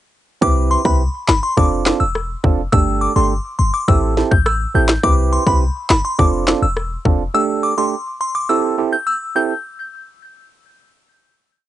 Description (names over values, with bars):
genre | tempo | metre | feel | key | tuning
dancehall | 104 BPM | 4/4 | straight | A minor | A4 = 439 Hz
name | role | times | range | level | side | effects
glassy synth bell | melody | 0.4-9.5 s | B5 to G6 | -20 LUFS | left 2 dB | chorus, cassette tape, analog delay
percussive organ stab | accompaniment | 0.4-9.5 s | A3 to B4 | -19 LUFS | right 8 dB | chorus, cassette tape
clean 808-style bass | bass | 0.4-7.3 s | E1 to C2 | -18 LUFS | left 1 dB | none
island pop drum kit | drums | 0.4-7.2 s | handclaps, kick drum, rim click, snare drum | -16 LUFS | left 1 dB | overdrive, cassette tape
room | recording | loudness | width
little or no reverb | home recording on cassette, nothing above 10.6 kHz | -14 LUFS | side -13 dB against mid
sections
0.4-9.7 verse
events
none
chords
0.4 Cmaj7; 1.6 F6; 2.7 Gsus2; 3.9 Am7; 5.0 Cmaj7; 6.2 F6; 7.3 Gsus2; 8.5 Am7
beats
| 0.42 1.00 1.57 2.15 | 2.73 3.31 3.88 4.46 | 5.04 5.61 6.19 6.77 | 7.34 7.92 8.50 9.07